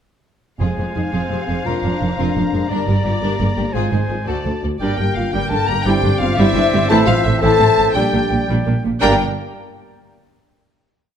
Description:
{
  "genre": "cinematic, heroic adventure film score",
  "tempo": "114 BPM (dotted quarters)",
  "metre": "6/8",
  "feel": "straight",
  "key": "F dorian, G dorian from 4.8 s",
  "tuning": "A4 = 440 Hz",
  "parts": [
    { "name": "warm symphonic violin section", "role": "melody", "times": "0.6-9.2 s", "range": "C5 to Bb5", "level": "-24 LUFS", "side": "left 4 dB", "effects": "none" },
    { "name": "bright oboe", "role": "second line", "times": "0.6-9.2 s", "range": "D5 to Bb5", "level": "-27 LUFS", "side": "right 1 dB", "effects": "none" },
    { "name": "mellow clarinet", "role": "second line", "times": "0.6-9.2 s", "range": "Bb4 to D5", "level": "-28 LUFS", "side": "left 1 dB", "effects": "none" },
    { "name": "warm symphonic violin section", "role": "second line", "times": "0.6-9.2 s", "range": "D4 to Bb5", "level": "-28 LUFS", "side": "left 3 dB", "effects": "none" },
    { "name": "dark studio viola section", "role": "accompaniment", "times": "0.6-9.2 s", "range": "E3 to C5", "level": "-25 LUFS", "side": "right 2 dB", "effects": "none" },
    { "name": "dark French horn section", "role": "sustained chords", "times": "0.6-9.2 s", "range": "C4 to Bb4", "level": "-22 LUFS", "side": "left 6 dB", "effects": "none" },
    { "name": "clear symphonic double bass section", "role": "bass", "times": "0.6-9.2 s", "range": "F1 to D2", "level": "-22 LUFS", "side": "right 3 dB", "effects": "none" },
    { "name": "rich symphonic cello section", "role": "bass", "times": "0.6-9.2 s", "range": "D2 to Bb2", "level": "-21 LUFS", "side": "right 2 dB", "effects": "none" },
    { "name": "flute section", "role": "second line", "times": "4.8-9.2 s", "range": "D5 to Bb5", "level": "-26 LUFS", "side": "equal", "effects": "none" },
    { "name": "mellow trombone section", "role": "sustained chords", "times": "4.8-9.2 s", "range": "D3 to D4", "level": "-26 LUFS", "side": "right 3 dB", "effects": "none" }
  ],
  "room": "light reverb",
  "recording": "close, detailed microphones",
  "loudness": "-15 LUFS",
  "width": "side -8 dB against mid",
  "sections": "0.6-4.8 theme; 4.8-9.0 theme; 9.0-10.1 final chord",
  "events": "none",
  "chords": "0.6 Fm; 1.7 Bbadd9/F; 2.7 Gm; 3.7 Fm/Ab; 4.3 D7; 4.8 Gm; 5.9 Cadd9/G; 6.9 Am; 8.0 Gm/Bb; 9.0 Gm",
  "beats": "| 0.60 1.13 | 1.65 2.17 | 2.69 3.21 | 3.73 4.27 | 4.81 5.34 | 5.86 6.38 | 6.90 7.43 | 7.96 8.49 | 9.03"
}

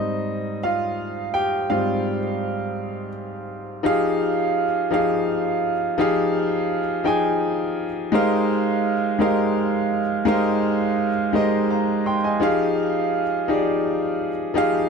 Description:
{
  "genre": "R&B",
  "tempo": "56 BPM (dotted quarters)",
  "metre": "6/8",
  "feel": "straight",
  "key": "F minor",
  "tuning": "A4 = 440 Hz",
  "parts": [
    { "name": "warm concert grand piano", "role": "solo", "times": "0.0-14.9 s", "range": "Ab2 to C6", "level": "-20 LUFS", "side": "equal", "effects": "none" }
  ],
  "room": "light reverb",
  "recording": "none",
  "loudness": "-19 LUFS",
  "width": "side -5 dB against mid",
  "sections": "0.0-3.8 A section; 3.8-14.9 B section",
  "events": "grand piano solo 0.0-3.8",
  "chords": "0.0 Ab6; 3.8 Fm9; 8.1 Abmaj13; 12.4 Fm9",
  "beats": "0.62 | 1.69 2.76 | 3.83 4.91 | 5.98 7.05 | 8.12 9.19 | 10.26 11.33 | 12.41 13.48 | 14.55"
}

